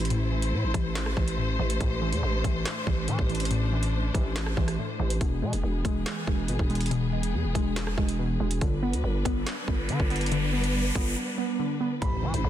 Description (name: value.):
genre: hip hop, drill.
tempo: 141 BPM.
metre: 4/4.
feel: half-time.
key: A minor.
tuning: A4 = 439 Hz.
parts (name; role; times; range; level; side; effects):
warbly dusty pluck; accompaniment; 0.0-12.5 s; A2 to B3; -30 LUFS; left 1 dB; chorus, phaser.
warm studio string section; sustained chords; 0.0-12.5 s; E3 to C5; -34 LUFS; left 1 dB; none.
growling 808-style bass; bass; 0.0-12.5 s; E1 to E3; -29 LUFS; equal; none.
drill drum kit; drums; 0.0-12.4 s; handclaps, hi-hat, kick drum, rim click, snare drum; -30 LUFS; equal; none.
impact and riser; sound effects; 0.0-0.1, 9.1-12.5 s; none; -35 LUFS; equal; none.
dark concert grand piano; melody; 12.0-12.5 s; B5; -34 LUFS; equal; ping-pong delay.
room: light reverb, digital ambience.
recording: dense, heavily limited modern master.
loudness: -25 LUFS.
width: side -11 dB against mid.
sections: 0.0-12.0 A section.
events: riser 9.1-12.0; break 11.2-12.0; impact 12.0-12.5.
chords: 0.0 Am; 5.2 E; 8.6 G.